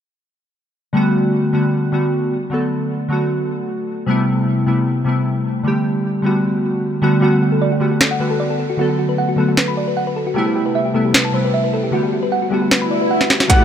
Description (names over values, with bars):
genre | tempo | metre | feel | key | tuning
future bass | 153 BPM | 4/4 | half-time | unclear | A4 = 440 Hz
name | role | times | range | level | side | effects
glassy digital keys | accompaniment | 0.9-13.6 s | C3 to A4 | -17 LUFS | equal | chorus, sidechain pumping, tape echo
thumb-piano-like synth pluck | arpeggios | 7.2-13.5 s | F#4 to B5 | -20 LUFS | right 1 dB | chorus, sidechain pumping, tape echo
trap drum kit | drums | 8.0-13.6 s | hi-hat, snare drum | -18 LUFS | equal | high-pass filter on snare, high-pass filter on hats
swell | sound effects | 12.8-13.5 s | none | -21 LUFS | left 1 dB | none
bright grand piano | melody | 13.5-13.6 s | F#5 | -15 LUFS | equal | sidechain pumping
dense compressed supersaw | riff | 13.5-13.6 s | A3 to F#5 | -17 LUFS | right 1 dB | sidechain pumping, low-pass filter
electronic kick drum | drums | 13.5-13.6 s | none | -11 LUFS | equal | none
room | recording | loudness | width
light reverb | none | -15 LUFS | side -9 dB against mid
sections
0.9-13.5 A section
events
swell 12.8-13.5; drum fill 13.2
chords
0.9 Gmaj9/D; 2.3 Bm7; 4.1 Am9; 5.7 Gmaj9/D; 8.6 Bm7; 10.4 Am9; 11.9 Gmaj7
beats
| 0.95 1.34 1.73 2.12 | 2.52 2.91 3.30 3.69 | 4.09 4.48 4.87 5.26 | 5.65 6.05 6.44 6.83 | 7.22 7.62 8.01 8.40 | 8.79 9.18 9.58 9.97 | 10.36 10.75 11.14 11.54 | 11.93 12.32 12.71 13.11 | 13.50